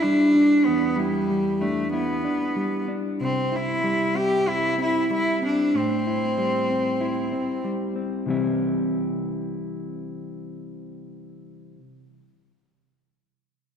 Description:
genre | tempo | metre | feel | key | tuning
rock | 94 BPM | 4/4 | straight | C major | A4 = 440 Hz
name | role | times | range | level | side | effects
bright cello | melody | 0.0-7.7 s | G3 to G4 | -22 LUFS | right 1 dB | none
mellow electric guitar | arpeggios | 0.0-11.8 s | E2 to E4 | -26 LUFS | left 2 dB | none
room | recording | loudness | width
wet concert hall reverb, RT60 2.1 s | recorded in a church or concert hall | -21 LUFS | side -8 dB against mid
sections
0.0-8.3 A section; 8.3-10.8 B section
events
none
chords
0.0 Em7; 3.2 C; 5.7 Am7; 8.3 C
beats
0.03 | 0.67 1.30 1.94 2.57 | 3.20 3.84 4.47 5.11 | 5.74 6.38 7.01 7.65 | 8.29 8.92 9.56 10.19

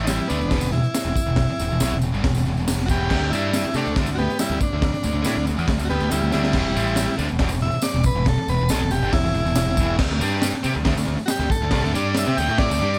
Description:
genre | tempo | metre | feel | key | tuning
garage rock duo or trio | 139 BPM | 4/4 | straight | E minor | A4 = 442 Hz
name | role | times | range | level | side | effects
combo organ | melody | 0.0-13.0 s | D3 to G5 | -28 LUFS | equal | none
fuzz guitar | riff | 0.0-13.0 s | E2 to A4 | -27 LUFS | equal | distortion
growling picked electric bass | bass | 0.0-13.0 s | E1 to C3 | -27 LUFS | equal | overdrive
crunchy breakbeat drum kit | drums | 0.1-12.7 s | crash cymbal, hi-hat, kick drum, snare drum | -27 LUFS | equal | none
tambourine | percussion | 0.1-13.0 s | none | -38 LUFS | equal | none
room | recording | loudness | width
small room reverb | none | -21 LUFS | mono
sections
0.0-13.0 A section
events
transistor combo organ solo 0.0-13.0; drum fill 6.1-6.5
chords
0.0 Em; 3.1 D5; 6.5 Em; 10.0 D5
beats
0.08 0.51 0.94 | 1.37 1.80 2.23 2.67 | 3.10 3.53 3.96 4.39 | 4.82 5.25 5.69 6.12 | 6.55 6.98 7.41 7.84 | 8.27 8.70 9.13 9.57 | 10.00 10.43 10.86 11.29 | 11.72 12.15 12.59

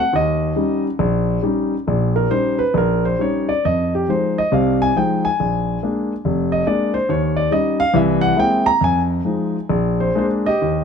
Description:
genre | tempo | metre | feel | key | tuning
solo jazz | 139 BPM | 4/4 | swing 65% on 8ths, rubato | Eb mixolydian | A4 = 440 Hz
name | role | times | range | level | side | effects
dark grand piano | solo | 0.0-10.8 s | F1 to Bb5 | -16 LUFS | equal | none
room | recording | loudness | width
light reverb | close, detailed microphones | -16 LUFS | side -6 dB against mid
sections
0.0-10.6 A section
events
grand piano solo 0.0-10.6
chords
0.2 Eb7; 3.6 Fm7; 5.4 Bb7; 7.1 Eb7; 7.9 Caug7; 8.8 Fm7; 9.7 Bb7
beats
| 0.15 0.58 1.01 1.44 | 1.88 2.31 2.75 3.20 | 3.65 4.09 4.53 4.96 | 5.39 5.82 6.24 6.67 | 7.09 7.52 7.95 8.38 | 8.82 9.25 9.70 10.15 | 10.61

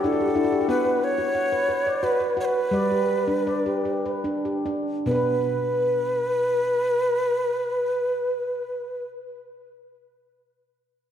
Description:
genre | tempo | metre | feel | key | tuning
world meditative, meditative tuned percussion | 69-92 BPM | 3/4 | straight | unclear | A4 = 441 Hz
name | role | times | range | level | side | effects
breathy Native American-style cedar flute | melody | 0.0-9.1 s | A4 to C#5 | -23 LUFS | right 1 dB | ping-pong delay
handpan | arpeggios | 0.0-9.2 s | B2 to F#5 | -25 LUFS | left 2 dB | none
room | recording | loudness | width
wet concert hall reverb, RT60 2.5 s | cassette tape | -21 LUFS | side -9 dB against mid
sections
0.0-5.1 A section; 5.1-10.3 B section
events
handpan fill 0.0-0.7; slowing down 0.7-5.1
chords
0.0 G5; 0.7 Bm; 2.7 G; 5.1 N.C.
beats
0.05 | 0.70 1.36 2.03 | 2.72 3.45 4.23 | 5.06 5.93 6.80 | 7.67 8.54

